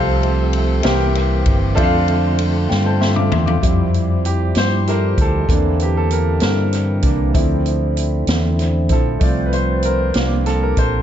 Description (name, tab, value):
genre	slow gospel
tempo	64 BPM (dotted quarters)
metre	6/8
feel	straight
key	F major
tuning	A4 = 440 Hz
part	clear grand piano	accompaniment	0.0-11.0 s	C3 to D6	-21 LUFS	equal	dub echo
part	tonewheel organ	sustained chords	0.0-11.0 s	D3 to C5	-24 LUFS	right 2 dB	fast rotary speaker
part	fingered electric bass	bass	0.0-11.0 s	G1 to G2	-18 LUFS	equal	none
part	swinging big-band drum kit	drums	0.2-10.9 s	hi-hat, kick drum, ride cymbal, snare drum, toms	-20 LUFS	equal	dub echo
part	mellow French horn section	sustained chords	3.6-11.0 s	D3 to F4	-30 LUFS	left 2 dB	none
room	light reverb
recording	echo-heavy mix, nothing above 7.8 kHz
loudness	-14 LUFS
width	side -10 dB against mid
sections	0.0-3.6 A section; 3.6-11.0 B section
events	drum fill 2.7-3.6; grand piano solo 3.6-11.0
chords	0.0 F/C; 0.8 C7; 1.8 F6; 3.6 Fmaj9; 5.5 C9/E; 7.4 Dm9; 9.2 F/C; 10.1 C7sus4